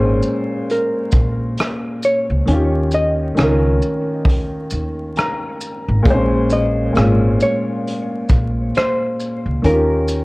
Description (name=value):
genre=lo-fi hip hop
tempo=67 BPM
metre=4/4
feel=swing 59% on 16ths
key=Bb dorian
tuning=A4 = 440 Hz
part: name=hollow-body jazz guitar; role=melody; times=0.0-10.2 s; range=Ab4 to Eb5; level=-20 LUFS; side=equal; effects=low-pass filter
part: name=dark upright piano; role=accompaniment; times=0.0-10.2 s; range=Bb2 to Bb5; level=-19 LUFS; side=equal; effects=low-pass filter
part: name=upright bass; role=bass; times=0.0-10.2 s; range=Ab1 to Eb2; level=-18 LUFS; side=equal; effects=none
part: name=vintage brush drum kit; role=drums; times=0.2-10.2 s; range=hi-hat, kick drum, rim click, shaker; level=-19 LUFS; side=equal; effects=vintage 12-bit sampler grit
room=moderate spring reverb, RT60 2.2 s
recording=worn, warbling old tape, cassette tape, vinyl crackle, warbly pitch drift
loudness=-15 LUFS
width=side -23 dB against mid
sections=0.0-10.2 A section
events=upright piano fill 4.7-6.1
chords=0.0 Bbm9; 2.5 Eb9; 6.1 Bbm9; 9.6 Eb9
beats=0.68 1.58 | 2.47 3.37 4.26 5.16 | 6.05 6.95 7.84 8.74 | 9.64